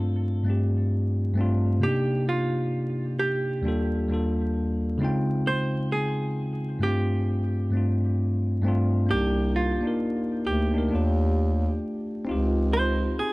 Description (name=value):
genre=lo-fi hip hop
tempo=66 BPM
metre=4/4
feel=swing 62% on 16ths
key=C dorian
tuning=A4 = 442 Hz
part: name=archtop guitar, miked and amplified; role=melody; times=0.0-13.3 s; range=F4 to C5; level=-29 LUFS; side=right 2 dB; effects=low-pass filter
part: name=bell-like tine electric piano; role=accompaniment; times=0.0-13.3 s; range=Eb2 to G5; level=-24 LUFS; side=equal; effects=low-pass filter
part: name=dark bass clarinet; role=bass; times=9.1-13.2 s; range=C2 to Eb2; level=-24 LUFS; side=equal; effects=none
room=small room reverb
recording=vinyl crackle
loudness=-23 LUFS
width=side -22 dB against mid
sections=0.0-9.1 A section; 9.1-13.3 B section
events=none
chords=0.0 G9sus4; 1.8 Cm9; 3.6 Ebmaj9#11; 5.0 Dbmaj9#11; 6.8 G9sus4; 9.1 Cm9; 10.9 Ebmaj9#11; 12.3 Dbmaj9#11